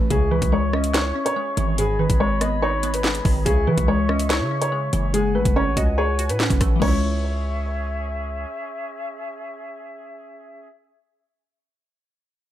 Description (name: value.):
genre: hip hop, drill.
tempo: 143 BPM.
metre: 4/4.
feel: half-time.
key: C# minor.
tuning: A4 = 440 Hz.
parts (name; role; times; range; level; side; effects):
dark concert grand piano; melody; 0.0-8.0 s; G#4 to D#5; -24 LUFS; equal; low-pass filter, digital delay.
glassy wavetable pluck; accompaniment; 0.0-10.7 s; G#2 to G#4; -25 LUFS; left 1 dB; chorus, low-pass filter.
hard-hitting 808-style bass; bass; 0.0-8.5 s; F#1 to E3; -24 LUFS; equal; none.
mellow small flute group; sustained chords; 0.1-10.7 s; C#4 to C#6; -32 LUFS; left 3 dB; none.
drill drum kit; drums; 0.1-6.9 s; crash cymbal, handclaps, hi-hat, kick drum, rim click, snare drum; -23 LUFS; equal; none.
room: little or no reverb.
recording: none.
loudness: -19 LUFS.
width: side -12 dB against mid.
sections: 0.0-6.8 A section; 6.8-10.2 B section.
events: none.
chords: 0.1 C#m; 1.8 G#m; 3.5 C#m; 5.1 F#madd9; 6.8 C#m.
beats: | 0.10 0.52 0.94 1.36 | 1.78 2.20 2.62 3.04 | 3.46 3.88 4.30 4.72 | 5.14 5.56 5.98 6.40 | 6.82 7.24 7.66 8.08 | 8.50 8.91 9.34 9.76.